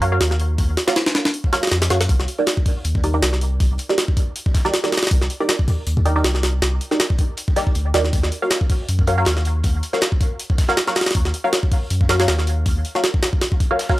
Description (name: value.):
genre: drum and bass, jungle.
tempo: 159 BPM.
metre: 4/4.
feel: swing 55% on 16ths.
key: unclear.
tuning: A4 = 438 Hz.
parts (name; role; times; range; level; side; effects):
filtered dub chord stab; stabs; 0.0-14.0 s; Eb4 to F5; -23 LUFS; right 1 dB; phaser, analog chorus, dub echo.
saturated sub bass; bass; 0.0-12.8 s; C2 to Gb2; -20 LUFS; equal; none.
jungle sampler-style drum kit; drums; 0.0-14.0 s; hi-hat, kick drum, snare drum; -19 LUFS; equal; none.
crunchy breakbeat drum kit; drums; 2.1-14.0 s; hi-hat, snare drum; -36 LUFS; right 1 dB; none.
room: little or no reverb.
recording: dry, gritty hardware recording.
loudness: -17 LUFS.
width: side -17 dB against mid.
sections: 0.0-14.0 A section.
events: none.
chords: 0.0 Ebm9; 2.1 Cm9; 8.1 Ebm9.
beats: 0.21 | 0.58 0.96 1.34 1.72 | 2.09 2.47 2.85 3.23 | 3.60 3.98 4.36 4.74 | 5.11 5.49 5.87 6.25 | 6.62 7.00 7.38 7.75 | 8.13 8.51 8.89 9.26 | 9.64 10.02 10.40 10.77 | 11.15 11.53 11.90 12.28 | 12.66 13.04 13.41 13.79.